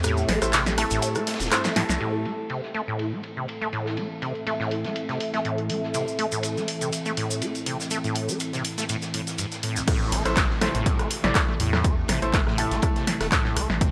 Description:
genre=acid house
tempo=122 BPM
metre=4/4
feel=swing 54% on 16ths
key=A minor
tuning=A4 = 440 Hz
part: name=warbly tape-like pad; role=sustained chords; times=0.0-13.9 s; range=A2 to G4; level=-36 LUFS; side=equal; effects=chorus, built-in reverb, sidechain pumping
part: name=acid bass, saw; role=riff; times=0.0-13.9 s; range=A1 to A3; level=-32 LUFS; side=equal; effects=overdrive, ensemble chorus, sidechain pumping, analog delay
part: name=round analog bass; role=bass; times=0.0-2.0, 10.1-13.9 s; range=E1 to E2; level=-31 LUFS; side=equal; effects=tube saturation, sidechain pumping
part: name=crunchy breakbeat drum kit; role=drums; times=0.0-13.9 s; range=ride cymbal, snare drum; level=-40 LUFS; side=equal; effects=high-pass filter on cymbals, low-pass filter on cymbals, high-pass filter on snare, low-pass filter on snare, high-pass filter on room, low-pass filter on room
part: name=punchy analog drum machine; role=drums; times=0.0-13.9 s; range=crash cymbal, handclaps, hi-hat, rim click, snare drum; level=-29 LUFS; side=equal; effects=low-pass filter on snare, low-pass filter on hats, low-pass filter on cymbals, low-pass filter on room
part: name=cabasa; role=percussion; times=0.0-2.0, 5.9-9.9 s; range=none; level=-36 LUFS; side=equal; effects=none
part: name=deep dark ambient pad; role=texture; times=0.0-9.9 s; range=A4 to A5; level=-36 LUFS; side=equal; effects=chorus, built-in reverb, sidechain pumping
part: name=bright baby grand piano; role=stabs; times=0.4-2.3, 10.3-13.9 s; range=A3 to D5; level=-32 LUFS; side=equal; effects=analog delay
part: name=electronic kick drum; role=drums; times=9.9-13.9 s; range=none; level=-26 LUFS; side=equal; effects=none
part: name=downlifter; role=sound effects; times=9.9-13.8 s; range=none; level=-40 LUFS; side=equal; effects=none
room=light reverb, small room reverb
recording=dry, gritty hardware recording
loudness=-25 LUFS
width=mono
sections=0.0-2.0 A section; 2.0-9.9 B section; 9.9-13.9 A section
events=drop 0.0-2.0, 9.9-13.9; break 0.0-2.0; drum fill 1.6-2.0; band accent 1.9; filter sweep on drum 2.0-9.9; filter sweep on ambient pad 2.0-9.9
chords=0.0 Am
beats=| 0.04 0.53 1.02 1.52 | 2.01 2.50 2.99 3.48 | 3.98 4.47 4.96 5.45 | 5.94 6.43 6.93 7.42 | 7.91 8.40 8.89 9.38 | 9.88 10.37 10.86 11.35 | 11.84 12.34 12.83 13.32 | 13.81

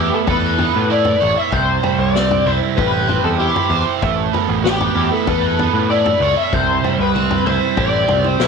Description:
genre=psychedelic rock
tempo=96 BPM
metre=4/4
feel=straight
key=unclear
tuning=A4 = 438 Hz
part: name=lead guitar through a small cranked amp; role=melody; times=0.0-8.5 s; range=G4 to E5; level=-18 LUFS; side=left 4 dB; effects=wah, overdrive, slapback echo
part: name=crunchy overdriven guitar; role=riff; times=0.0-8.5 s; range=C3 to C#5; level=-18 LUFS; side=right 12 dB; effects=flanger
part: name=growling picked electric bass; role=bass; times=0.0-8.5 s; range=A1 to A2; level=-21 LUFS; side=left 1 dB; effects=overdrive
part: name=vintage drum kit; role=drums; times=0.3-8.5 s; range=kick drum, snare drum, toms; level=-23 LUFS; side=left 5 dB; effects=none
room=light reverb, small room ambience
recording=1960s-style stereo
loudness=-14 LUFS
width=side -5 dB against mid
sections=0.0-8.5 A section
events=none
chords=0.0 Aadd9; 1.5 C; 4.0 Aadd9; 6.5 C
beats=0.28 0.90 | 1.52 2.15 2.77 3.40 | 4.02 4.65 5.27 5.90 | 6.52 7.15 7.77 8.40

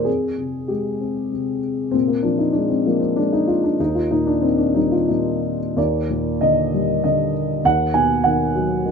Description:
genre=classical, lyrical solo piano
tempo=86-101 BPM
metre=3/4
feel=rubato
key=Eb major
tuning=A4 = 440 Hz
part: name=dark upright piano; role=solo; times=0.0-8.9 s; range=Eb2 to Ab5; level=-17 LUFS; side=left 1 dB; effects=none
room=moderate studio reverb, RT60 0.6 s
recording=none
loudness=-17 LUFS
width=side -6 dB against mid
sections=0.0-5.8 A section; 5.8-8.9 A section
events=none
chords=0.1 Fmadd9; 1.9 Bb5; 3.8 Eb; 5.8 Ebmaj7; 7.6 B/D#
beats=| 0.07 0.70 1.32 | 1.94 2.56 3.17 | 3.79 4.43 5.09 | 5.77 6.42 7.04 | 7.65 8.25 8.85

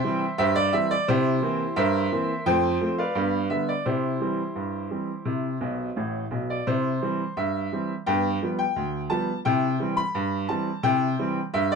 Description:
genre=ragtime piano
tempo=86 BPM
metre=2/4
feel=straight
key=C major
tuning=A4 = 440 Hz
part: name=bright upright piano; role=solo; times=0.0-11.8 s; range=A1 to B5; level=-23 LUFS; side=equal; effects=none
room=moderate small room reverb, RT60 0.5 s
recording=dark, warm production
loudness=-23 LUFS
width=side -5 dB against mid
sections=0.0-6.7 A section; 6.7-11.8 A section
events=upright piano fill 5.6-6.7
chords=0.0 C; 1.1 C7; 2.5 F; 3.2 G7; 3.9 C; 8.1 G7; 9.5 C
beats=0.38 | 1.08 1.77 | 2.46 3.16 | 3.86 4.56 | 5.26 5.97 | 6.67 7.37 | 8.06 8.76 | 9.46 10.15 | 10.85 11.54

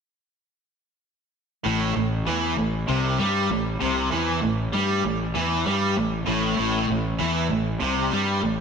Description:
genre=rock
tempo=98 BPM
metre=4/4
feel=straight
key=unclear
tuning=A4 = 441 Hz
part: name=overdriven electric guitar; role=riff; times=1.6-8.6 s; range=A2 to G3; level=-25 LUFS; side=right 9 dB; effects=spring reverb
part: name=overdriven semi-hollow guitar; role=riff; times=1.6-8.6 s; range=A2 to G3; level=-26 LUFS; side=left 8 dB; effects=ensemble chorus
part: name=fuzz fingered electric bass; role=bass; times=1.7-8.6 s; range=A1 to G2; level=-27 LUFS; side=equal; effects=overdrive
room=moderate lush hall reverb, RT60 1.9 s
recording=bright 1980s-style digital production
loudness=-21 LUFS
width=side -6 dB against mid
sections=1.7-8.6 A section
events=none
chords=1.7 A5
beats=| 1.65 2.27 2.88 3.50 | 4.11 4.73 5.34 5.96 | 6.57 7.19 7.80 8.42

